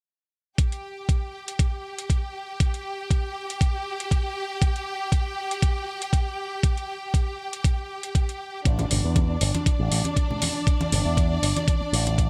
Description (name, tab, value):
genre	nu-disco, nu disco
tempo	119 BPM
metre	4/4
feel	swing 53% on 16ths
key	unclear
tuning	A4 = 440 Hz
part	clear symphonic string section	sustained chords	0.6-12.3 s	D4 to G5	-33 LUFS	equal	sidechain pumping
part	electronic hi-hat	drums	0.6-12.3 s	none	-32 LUFS	equal	none
part	electronic kick drum	drums	0.6-12.3 s	none	-24 LUFS	equal	none
part	picked electric bass with an envelope filter	bass	8.7-12.3 s	G1 to E2	-26 LUFS	equal	none
part	congas	percussion	8.8-12.2 s	none	-33 LUFS	equal	none
room	light reverb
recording	bright 1980s-style digital production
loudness	-25 LUFS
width	mono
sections	0.6-12.3 A section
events	none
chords	0.6 N.C.; 8.7 A5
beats	| 0.59 1.09 1.59 2.10 | 2.60 3.11 3.61 4.12 | 4.62 5.12 5.63 6.13 | 6.64 7.14 7.65 8.15 | 8.65 9.16 9.66 10.17 | 10.67 11.18 11.68 12.18